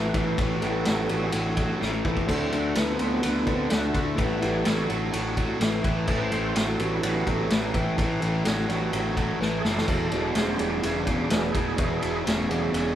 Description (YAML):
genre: blues rock power trio and southern rock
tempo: 126 BPM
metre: 4/4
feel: straight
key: A mixolydian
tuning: A4 = 440 Hz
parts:
  - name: overdriven tonewheel organ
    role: sustained chords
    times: 0.0-12.9 s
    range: F#3 to C#5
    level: -32 LUFS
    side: right 3 dB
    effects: slow rotary speaker, chorus vibrato
  - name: raw garage guitar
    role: riff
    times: 0.0-12.9 s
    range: E2 to B3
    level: -26 LUFS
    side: equal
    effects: overdrive
  - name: fuzz picked electric bass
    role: bass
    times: 0.0-12.9 s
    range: E1 to D2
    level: -31 LUFS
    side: equal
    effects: overdrive
  - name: vintage drum kit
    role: drums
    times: 0.1-12.8 s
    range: crash cymbal, kick drum, ride cymbal, snare drum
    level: -28 LUFS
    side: equal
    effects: none
room: moderate large studio reverb, RT60 1.1 s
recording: band playing live in one room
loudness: -23 LUFS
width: side -11 dB against mid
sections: 0.0-12.9 A section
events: tonewheel organ solo 0.0-12.9; drum fill 1.8-2.3, 9.4-9.9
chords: 0.0 A7; 2.3 D7; 4.2 A7; 9.9 E7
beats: | 0.38 0.85 1.33 1.80 | 2.28 2.75 3.23 3.71 | 4.18 4.66 5.13 5.61 | 6.08 6.56 7.03 7.51 | 7.98 8.46 8.93 9.41 | 9.88 10.36 10.83 11.31 | 11.78 12.26 12.73